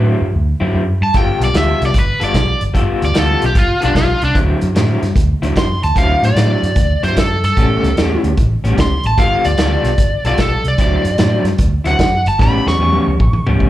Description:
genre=electric blues shuffle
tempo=149 BPM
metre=4/4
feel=swing 66% on 8ths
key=D mixolydian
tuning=A4 = 440 Hz
part: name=crunchy overdriven guitar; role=melody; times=0.0-13.4 s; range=D4 to C#6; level=-18 LUFS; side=equal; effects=slapback echo
part: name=electric guitar through a small old amp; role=riff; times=0.0-13.7 s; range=A2 to A4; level=-20 LUFS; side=left 2 dB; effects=tremolo, slapback echo
part: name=vintage muted fingered electric bass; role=bass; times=0.0-13.7 s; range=G1 to A2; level=-16 LUFS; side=equal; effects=none
part: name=vintage drum kit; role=drums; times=1.1-13.7 s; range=hi-hat, kick drum, snare drum, toms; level=-17 LUFS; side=equal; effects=none
room=small room ambience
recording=live gig heard through the venue's PA, club reverb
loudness=-12 LUFS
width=side -14 dB against mid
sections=0.0-13.7 A section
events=drum fill 12.4-13.7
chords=0.0 D9; 1.1 G9; 4.4 D9; 7.6 A9; 9.2 G9; 10.8 D9; 12.4 A9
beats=0.35 0.75 | 1.15 1.55 1.95 2.35 | 2.75 3.15 3.55 3.96 | 4.36 4.76 5.16 5.56 | 5.96 6.36 6.76 7.17 | 7.57 7.97 8.37 8.77 | 9.18 9.58 9.98 10.38 | 10.78 11.19 11.59 11.99 | 12.39 12.79 13.20 13.60

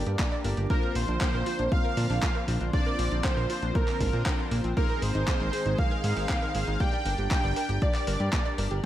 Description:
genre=italo disco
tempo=118 BPM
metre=4/4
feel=straight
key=unclear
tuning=A4 = 440 Hz
part: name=warm analog pad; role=sustained chords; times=0.0-8.8 s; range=D3 to Ab4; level=-36 LUFS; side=right 1 dB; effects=chorus
part: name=analog pluck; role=arpeggios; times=0.0-8.8 s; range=Bb3 to D5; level=-37 LUFS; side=right 3 dB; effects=chorus, tape echo
part: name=chorused polysynth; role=stabs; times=0.0-8.8 s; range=D4 to F5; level=-37 LUFS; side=left 2 dB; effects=none
part: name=fat analog bass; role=bass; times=0.0-8.8 s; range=G1 to Bb2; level=-29 LUFS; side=equal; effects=none
part: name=clean 12-bit digital drum machine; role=drums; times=0.1-8.8 s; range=handclaps, hi-hat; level=-36 LUFS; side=equal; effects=gated reverb
part: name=electronic kick drum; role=drums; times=0.2-8.4 s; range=none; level=-28 LUFS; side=equal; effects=none
part: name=wide unison lead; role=melody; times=0.7-8.6 s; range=Bb4 to G5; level=-32 LUFS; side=right 1 dB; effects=wide subtle chorus, tape echo
room=light reverb, digital ambience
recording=vinyl crackle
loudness=-25 LUFS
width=side -12 dB against mid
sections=0.0-8.9 A section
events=none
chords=0.0 Gm; 0.7 Bbadd9; 4.8 Abadd9; 6.8 Gm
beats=0.19 | 0.70 1.21 1.72 2.23 | 2.73 3.24 3.75 4.26 | 4.77 5.28 5.79 6.29 | 6.80 7.31 7.82 8.33

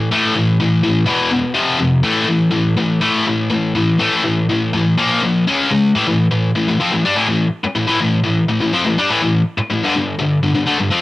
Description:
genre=metal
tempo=124 BPM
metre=4/4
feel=straight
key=unclear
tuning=A4 = 440 Hz
part: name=high-gain distorted guitar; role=solo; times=0.0-11.0 s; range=E2 to D4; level=-14 LUFS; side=left 1 dB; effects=distortion, cassette tape
room=digital ambience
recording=home recording on cassette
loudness=-14 LUFS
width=side -17 dB against mid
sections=0.0-5.9 A section; 5.9-11.0 B section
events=none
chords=0.0 A5; 1.1 E5; 1.6 F5; 2.0 A5; 5.0 Bb5; 5.4 C#5; 5.9 A5; 9.8 G5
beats=| 0.11 0.59 1.08 1.56 | 2.05 2.54 3.02 3.51 | 3.99 4.48 4.96 5.45 | 5.93 6.42 6.90 7.39 | 7.88 8.36 8.85 9.33 | 9.82 10.30 10.79

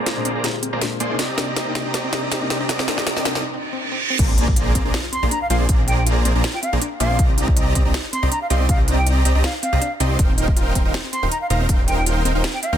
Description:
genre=future bass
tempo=160 BPM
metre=4/4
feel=swing 54% on 16ths, half-time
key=unclear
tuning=A4 = 441 Hz
part: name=muted studio string section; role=sustained chords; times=0.0-3.4 s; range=C3 to Eb4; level=-36 LUFS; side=right 3 dB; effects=none
part: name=dense compressed supersaw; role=riff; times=0.0-12.8 s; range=Bb3 to C6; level=-24 LUFS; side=right 1 dB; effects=sidechain pumping, low-pass filter, ping-pong delay
part: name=wide detuned saw bass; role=bass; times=0.0-12.8 s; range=Eb1 to Eb2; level=-21 LUFS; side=equal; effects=chorus, sidechain pumping, high-pass filter
part: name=riser, reverse cymbal and impact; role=sound effects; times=2.4-5.7 s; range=none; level=-29 LUFS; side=right 3 dB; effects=none
part: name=wide unison pluck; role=arpeggios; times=0.1-12.7 s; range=C4 to F4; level=-31 LUFS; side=left 2 dB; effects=sidechain pumping, ping-pong delay
part: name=trap drum kit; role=drums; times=0.1-12.7 s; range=crash cymbal, hi-hat, snare drum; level=-24 LUFS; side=equal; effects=soft clipping on snare
part: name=felt-muted upright piano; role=accompaniment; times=0.2-3.4 s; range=Bb2 to G4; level=-29 LUFS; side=left 6 dB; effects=sidechain pumping, ping-pong delay
part: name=electronic kick drum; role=drums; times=4.2-11.8 s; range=none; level=-18 LUFS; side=equal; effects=none
part: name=reedy concert flute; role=melody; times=5.1-12.7 s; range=F5-22c to C6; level=-25 LUFS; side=right 1 dB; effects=sidechain pumping, digital delay
room=light reverb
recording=dense, heavily limited modern master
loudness=-17 LUFS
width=side -10 dB against mid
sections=0.0-4.2 A section; 4.2-12.8 B section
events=build-up 0.0-4.2; drum fill 0.0-3.4; filter sweep on synth arpeggio sound 0.0-4.2; break 3.4-4.2; reverse cymbal 3.4-4.2; drop 4.2-12.8; impact 4.2-5.7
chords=0.0 Bb9; 1.2 Cm9; 4.2 Bb9; 7.2 Cm9; 10.2 Eb69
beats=0.07 0.44 0.81 | 1.19 1.56 1.94 2.31 | 2.69 3.06 3.44 3.81 | 4.19 4.57 4.94 5.32 | 5.69 6.07 6.44 6.82 | 7.19 7.57 7.94 8.31 | 8.69 9.06 9.44 9.81 | 10.19 10.56 10.94 11.31 | 11.69 12.06 12.44

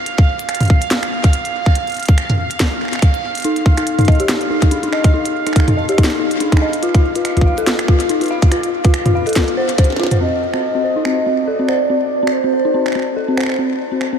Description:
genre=IDM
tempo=142 BPM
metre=4/4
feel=swing 56% on 16ths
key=C minor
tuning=A4 = 440 Hz
part: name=bubbling stepped-filter texture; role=texture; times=0.0-10.2 s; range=F5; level=-25 LUFS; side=right 6 dB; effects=chorus, built-in reverb
part: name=glitchy drum kit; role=drums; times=0.1-14.1 s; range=finger snaps, hi-hat, snare drum, toms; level=-20 LUFS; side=equal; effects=ping-pong delay
part: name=electronic kick drum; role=drums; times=0.2-9.9 s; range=none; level=-12 LUFS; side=equal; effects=none
part: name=dark detuned synth bell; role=arpeggios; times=3.4-14.2 s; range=C4 to F5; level=-17 LUFS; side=left 2 dB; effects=chorus, low-pass filter, ping-pong delay
part: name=warbly nostalgic lead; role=melody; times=10.2-13.3 s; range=C5 to Eb5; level=-18 LUFS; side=right 1 dB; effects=wide subtle chorus, ping-pong delay
room=moderate huge ambient reverb, RT60 9.7 s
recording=dreamy mix soaked in reverb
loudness=-13 LUFS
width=side -7 dB against mid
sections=0.0-10.2 A section; 10.2-14.2 B section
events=drum fill 9.8-10.2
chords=0.0 N.C.; 10.2 Cmadd9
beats=| 0.07 0.49 0.91 1.33 | 1.76 2.18 2.60 3.02 | 3.45 3.87 4.29 4.71 | 5.14 5.56 5.98 6.40 | 6.83 7.25 7.67 8.09 | 8.52 8.94 9.36 9.78 | 10.21 10.63 11.05 11.47 | 11.90 12.32 12.74 13.16 | 13.59 14.01

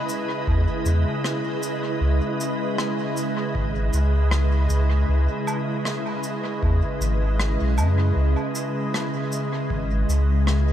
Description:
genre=ambient dub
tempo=78 BPM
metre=4/4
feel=swing 57% on 16ths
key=C# minor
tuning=A4 = 440 Hz
part: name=soft additive organ-like pad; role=sustained chords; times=0.0-10.7 s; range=C#3 to D#5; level=-25 LUFS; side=right 1 dB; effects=ensemble chorus, built-in reverb
part: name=cabasa, rim click and woodblock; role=drums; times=0.1-10.6 s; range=none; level=-33 LUFS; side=equal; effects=dub echo
part: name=warm sub bass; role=bass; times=0.5-10.7 s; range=G#1 to F#2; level=-20 LUFS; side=equal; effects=none
part: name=electronic kick drum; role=drums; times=0.5-9.9 s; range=none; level=-28 LUFS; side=equal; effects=none
room=moderate huge ambient reverb, RT60 3.8 s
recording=dreamy mix soaked in reverb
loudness=-20 LUFS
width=side -11 dB against mid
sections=0.0-10.7 A section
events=none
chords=0.0 C#m7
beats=0.47 1.24 | 2.01 2.78 3.55 4.32 | 5.09 5.86 6.63 7.40 | 8.17 8.94 9.71 10.47

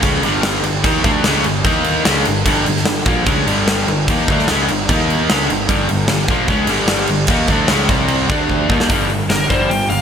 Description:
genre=hard rock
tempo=149 BPM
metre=4/4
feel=straight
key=G minor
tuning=A4 = 445 Hz
part: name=chorused pulse-width pad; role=sustained chords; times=0.0-8.9 s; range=G3 to F5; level=-27 LUFS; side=equal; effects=none
part: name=cranked stack guitar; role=riff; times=0.0-10.0 s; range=G2 to Eb4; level=-17 LUFS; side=left 1 dB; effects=overdrive, wide subtle chorus
part: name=fuzz picked electric bass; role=bass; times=0.0-10.0 s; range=G1 to Eb2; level=-21 LUFS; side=equal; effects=overdrive
part: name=huge arena drum kit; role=drums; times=0.0-10.0 s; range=crash cymbal, hi-hat, kick drum, snare drum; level=-17 LUFS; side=equal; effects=none
part: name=high-gain lead guitar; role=melody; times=9.3-10.0 s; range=Bb4 to G5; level=-17 LUFS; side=left 1 dB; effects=distortion
room=moderate lush hall reverb, RT60 2.1 s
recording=bright 1980s-style digital production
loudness=-13 LUFS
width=side -7 dB against mid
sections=0.0-8.9 A section; 8.9-10.0 B section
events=drum fill 8.5-8.9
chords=0.0 G5; 1.6 Eb5; 2.1 Gm; 4.9 Eb5; 5.3 Gm; 7.9 C5; 8.3 D5; 8.7 Gm; 8.9 G5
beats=0.03 0.44 | 0.84 1.25 1.65 2.05 | 2.46 2.86 3.26 3.67 | 4.07 4.47 4.88 5.28 | 5.68 6.08 6.49 6.89 | 7.29 7.69 8.10 8.50 | 8.90 9.30 9.71

